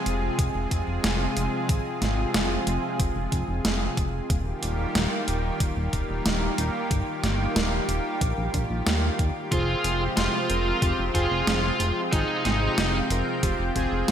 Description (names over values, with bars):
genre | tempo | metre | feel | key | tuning
synthwave | 92 BPM | 4/4 | straight | F minor | A4 = 440 Hz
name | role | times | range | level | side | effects
lush unison pad | sustained chords | 0.0-14.1 s | C3 to G5 | -28 LUFS | equal | chorus, sidechain pumping
chorused synth bass | bass | 0.1-14.1 s | Eb1 to Eb2 | -28 LUFS | equal | none
clean 12-bit digital drum machine | drums | 0.1-14.1 s | hi-hat, snare drum | -28 LUFS | right 1 dB | overdrive, gated reverb
electronic kick drum | drums | 0.4-13.9 s | none | -27 LUFS | equal | overdrive
bluesy overdriven lead guitar | melody | 9.5-13.0 s | Eb4 to F4 | -28 LUFS | equal | distortion, ping-pong delay
analog synth brass | stabs | 9.5-14.1 s | C4 to Bb4 | -30 LUFS | right 2 dB | chorus, cassette tape, ping-pong delay
room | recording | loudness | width
moderate lush hall reverb, RT60 2.0 s | bright 1980s-style digital production | -23 LUFS | side -9 dB against mid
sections
0.0-14.1 A section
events
none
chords
0.0 Fm; 4.3 Ebadd9; 9.5 Fm